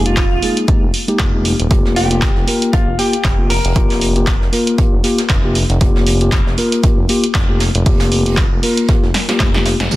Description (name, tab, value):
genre	deep house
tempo	117 BPM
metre	4/4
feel	swing 56% on 16ths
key	unclear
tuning	A4 = 444 Hz
part	mellow tine electric piano	stabs	0.0-10.0 s	Ab3 to Bb4	-18 LUFS	left 1 dB	sidechain pumping, low-pass filter, analog delay
part	smooth synth bass	bass	0.0-9.9 s	Eb1 to F1	-18 LUFS	equal	sidechain pumping
part	airy dreamy lead	melody	0.1-0.6 s	F4	-22 LUFS	right 4 dB	chorus, analog delay
part	punchy analog drum machine	drums	0.1-10.0 s	handclaps, hi-hat, snare drum, tambourine	-20 LUFS	right 1 dB	none
part	electronic kick drum	drums	0.2-9.5 s	none	-15 LUFS	equal	none
part	jazz brush drum kit	drums	1.7-10.0 s	hi-hat, snare drum	-29 LUFS	right 3 dB	sidechain pumping on hats, high-pass filter on hats, low-pass filter on hats, soft clipping on snare, high-pass filter on snare, low-pass filter on snare, high-pass filter on room, low-pass filter on room
part	vintage hollow-body jazz guitar	melody	2.0-4.5 s	F4 to Bb4	-22 LUFS	left 2 dB	tape echo
part	impact	sound effects	9.9-10.0 s	none	-16 LUFS	equal	none
room	light reverb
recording	dense, heavily limited modern master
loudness	-12 LUFS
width	side -17 dB against mid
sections	0.0-9.9 A section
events	drum fill 9.1-9.9; band accent 9.8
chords	0.0 Fm11; 1.7 Gm7/F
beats	0.17 0.68 1.19 | 1.71 2.22 2.73 3.25 | 3.76 4.27 4.78 5.30 | 5.81 6.32 6.83 7.35 | 7.86 8.37 8.89 9.40 | 9.91